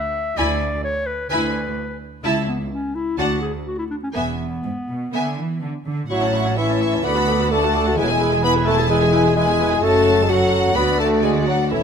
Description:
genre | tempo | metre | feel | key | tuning
quick classical-period movement for symphony orchestra | 128 BPM | 4/4 | straight | unclear | A4 = 440 Hz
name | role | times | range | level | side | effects
clear clarinet | second line | 0.0-11.8 s | B3 to E5 | -26 LUFS | left 3 dB | none
rich studio violin section | melody | 0.4-11.8 s | C#5 to C#6 | -30 LUFS | left 1 dB | none
rich studio violin section | second line | 0.4-11.8 s | E5 to B5 | -25 LUFS | left 2 dB | none
rich symphonic viola section | accompaniment | 0.4-11.8 s | B3 to F#5 | -24 LUFS | right 1 dB | none
rich studio cello section | bass | 0.4-11.8 s | C#2 to E3 | -25 LUFS | right 2 dB | none
rich studio double bass section | bass | 0.4-11.8 s | E1 to D2 | -26 LUFS | right 4 dB | none
mellow hollow small flute group | second line | 6.1-11.8 s | E5 to B5 | -27 LUFS | equal | none
mellow bassoon | accompaniment | 6.1-11.8 s | E3 to B3 | -21 LUFS | equal | none
mellow French horn section | sustained chords | 6.1-11.8 s | C#4 to A4 | -25 LUFS | left 7 dB | none
room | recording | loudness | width
light reverb | close, detailed microphones | -17 LUFS | side -7 dB against mid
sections
0.0-6.1 A section; 6.1-11.8 B section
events
none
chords
0.4 E7/D; 2.2 A/C#; 3.2 D; 4.1 E; 6.1 A; 7.0 D; 8.0 E; 9.8 F#m; 10.8 D6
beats
| 0.38 0.84 1.31 1.77 | 2.24 2.71 3.18 3.66 | 4.15 4.64 5.13 5.62 | 6.10 6.57 7.05 7.52 | 7.98 8.45 8.91 9.37 | 9.84 10.30 10.77 11.24 | 11.71

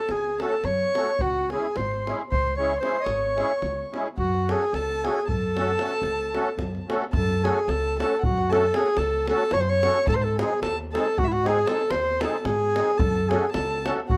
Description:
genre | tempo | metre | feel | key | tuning
balkan folk, Balkan wedding band | 224 BPM (eighths) | 11/8 | straight | F# dorian sharp4 | A4 = 440 Hz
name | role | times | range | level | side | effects
mellow clarinet | melody | 0.0-14.2 s | E4 to D#5 | -27 LUFS | equal | none
dark violin | second line | 0.0-14.2 s | E5 to D#6 | -34 LUFS | equal | none
upright bass | bass | 0.1-14.2 s | G#1 to G#2 | -32 LUFS | equal | none
davul | percussion | 0.1-14.2 s | none | -34 LUFS | equal | none
musette accordion | accompaniment | 0.4-14.0 s | G#3 to A4 | -29 LUFS | equal | none
room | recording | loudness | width
light reverb | none | -24 LUFS | mono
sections
0.0-7.1 A section; 7.1-14.2 B section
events
none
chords
0.0 F#m; 1.2 C#m; 4.2 F#m; 10.1 G#; 13.0 F#m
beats
0.11 0.38 0.65 0.92 | 1.19 1.46 1.74 2.01 2.28 2.55 2.82 3.09 3.36 3.63 3.90 | 4.17 4.44 4.71 4.99 5.25 5.53 5.79 6.06 6.33 6.60 6.87 | 7.14 7.41 7.67 7.94 8.21 8.48 8.74 9.01 9.28 9.54 9.81 | 10.08 10.34 10.61 10.88 11.14 11.41 11.67 11.94 12.21 12.47 12.74 | 13.00 13.27 13.53 13.80 14.06

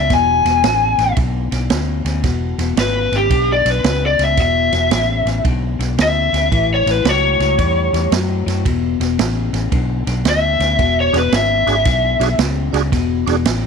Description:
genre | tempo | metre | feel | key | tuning
electric blues shuffle | 112 BPM | 4/4 | swing 66% on 8ths | E mixolydian | A4 = 440 Hz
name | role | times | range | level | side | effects
lead guitar through a small cranked amp | melody | 0.0-12.4 s | G4 to G#5 | -16 LUFS | left 2 dB | overdrive
electric guitar through a small old amp | riff | 0.0-13.7 s | E2 to G3 | -23 LUFS | left 15 dB | wide subtle chorus
vintage muted fingered electric bass | bass | 0.0-13.7 s | E1 to F#2 | -20 LUFS | right 1 dB | none
swinging big-band drum kit | drums | 0.1-13.6 s | kick drum, ride cymbal, snare drum | -21 LUFS | right 5 dB | none
tonewheel organ | accompaniment | 11.1-13.4 s | D4 to G#4 | -21 LUFS | right 17 dB | slow rotary speaker, overdrive, chorus vibrato
room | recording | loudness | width
small room ambience | 1960s-style stereo with parts hard left and right | -14 LUFS | side -6 dB against mid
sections
0.0-13.7 A section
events
none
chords
0.0 E7(no3); 6.5 A7; 8.6 E7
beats
| 0.10 0.63 1.17 1.70 | 2.24 2.77 3.31 3.84 | 4.38 4.91 5.44 5.98 | 6.51 7.04 7.58 8.11 | 8.65 9.18 9.71 10.25 | 10.78 11.32 11.85 12.38 | 12.92 13.45

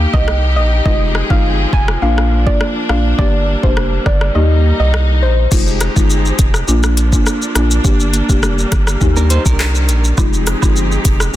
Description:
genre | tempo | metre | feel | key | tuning
dancehall | 103 BPM | 4/4 | straight | F dorian | A4 = 438 Hz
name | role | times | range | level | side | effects
folk marimba with medium mallets | accompaniment | 0.0-11.4 s | Ab3 to G4 | -20 LUFS | left 2 dB | none
warm studio string section | sustained chords | 0.0-11.3 s | Eb3 to Ab4 | -22 LUFS | equal | sidechain pumping
round analog bass | bass | 0.0-11.3 s | F1 to Eb2 | -15 LUFS | equal | none
soft round pluck | melody | 0.1-5.3 s | C5 to Ab5 | -20 LUFS | equal | chorus, digital delay
afro-pop drum kit | drums | 0.1-11.3 s | crash cymbal, handclaps, hi-hat, kick drum, rim click, shaker | -15 LUFS | equal | soft clipping on snare
clean electric guitar | arpeggios | 9.2-10.1 s | D4 to C5 | -24 LUFS | right 5 dB | tremolo, digital delay
woodblock and cabasa | percussion | 10.2-11.3 s | none | -28 LUFS | right 10 dB | none
room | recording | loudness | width
digital ambience | dense, heavily limited modern master | -11 LUFS | side -14 dB against mid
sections
0.0-5.5 A section; 5.5-11.4 B section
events
kick muted 4.4-5.5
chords
0.0 Eb; 0.9 Fm7; 2.0 Bb; 3.2 Gm; 4.4 Eb; 5.5 Fm7; 6.7 Bb; 7.8 Gm; 9.0 Eb; 10.2 Fm7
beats
0.27 | 0.86 1.44 2.02 2.60 | 3.19 3.77 4.35 4.93 | 5.52 6.10 6.68 7.26 | 7.85 8.43 9.01 9.59 | 10.18 10.76 11.34

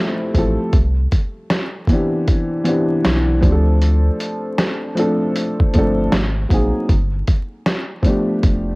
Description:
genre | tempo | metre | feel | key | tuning
lo-fi hip hop | 78 BPM | 4/4 | swing 65% on 16ths | C major | A4 = 439 Hz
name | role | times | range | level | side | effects
dark upright piano | accompaniment | 0.0-8.8 s | E3 to A4 | -18 LUFS | equal | cassette tape
lo-fi sampler-style drum kit | drums | 0.3-8.7 s | hi-hat, kick drum, snare drum | -17 LUFS | equal | overdrive, vintage 12-bit sampler grit, cassette tape
warm sub bass | bass | 0.4-8.8 s | F1 to D2 | -17 LUFS | equal | tube saturation
room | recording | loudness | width
light reverb, digital ambience | home recording on cassette, vinyl crackle | -15 LUFS | side -25 dB against mid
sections
0.0-8.8 A section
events
none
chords
0.0 Fmaj9; 0.7 Cmaj9; 3.4 Dm7; 6.1 Ab9; 6.9 G9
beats
| 0.73 1.50 2.27 3.04 | 3.81 4.58 5.35 6.12 | 6.89 7.66 8.43

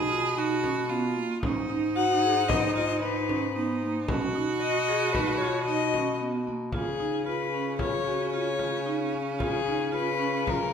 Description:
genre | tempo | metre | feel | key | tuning
contemporary instrumental, chamber music in an uneven meter | 113 BPM | 5/4 | straight | Db mixolydian | A4 = 440 Hz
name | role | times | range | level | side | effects
bright cello | second line | 0.0-10.7 s | Db4 to Ab4 | -32 LUFS | right 5 dB | none
bright bass clarinet | bass | 0.0-10.7 s | Ab2 to Db3 | -31 LUFS | left 3 dB | none
vibraphone with medium hard mallets | arpeggios | 0.1-10.6 s | Bb3 to Ab4 | -31 LUFS | right 4 dB | none
frame drum | percussion | 0.6-10.7 s | none | -35 LUFS | left 1 dB | none
warm violin | melody | 2.0-10.7 s | Ab4 to Gb5 | -29 LUFS | left 7 dB | none
room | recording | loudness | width
wet recital hall reverb, RT60 1.4 s | none | -25 LUFS | side -7 dB against mid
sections
0.0-6.7 A section; 6.7-10.7 B section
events
none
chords
0.0 Cb5; 1.4 Abm7; 4.1 Cb; 6.7 Db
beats
0.37 0.90 | 1.43 1.96 2.50 3.02 3.56 | 4.08 4.62 5.14 5.67 6.21 | 6.74 7.27 7.80 8.33 8.86 | 9.40 9.93 10.46

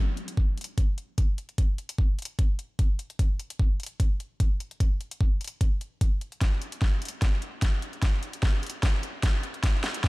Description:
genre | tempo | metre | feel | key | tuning
dubstep | 149 BPM | 4/4 | swing 54% on 16ths, half-time | none | none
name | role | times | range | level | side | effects
dubstep drum kit | drums | 0.2-10.1 s | hi-hat, snare drum | -34 LUFS | equal | overdrive, high-pass filter on hats, high-pass filter on snare
electronic kick drum | drums | 0.4-10.1 s | none | -23 LUFS | equal | overdrive
room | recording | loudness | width
little or no reverb | dark, warm production | -25 LUFS | side -22 dB against mid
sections
0.0-10.1 A section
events
build-up 0.0-10.1; drum fill 6.4-10.1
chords
none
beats
0.37 0.78 1.18 | 1.58 1.99 2.39 2.79 | 3.19 3.60 4.00 4.40 | 4.80 5.21 5.61 6.01 | 6.41 6.82 7.22 7.62 | 8.03 8.43 8.83 9.23 | 9.64 10.04

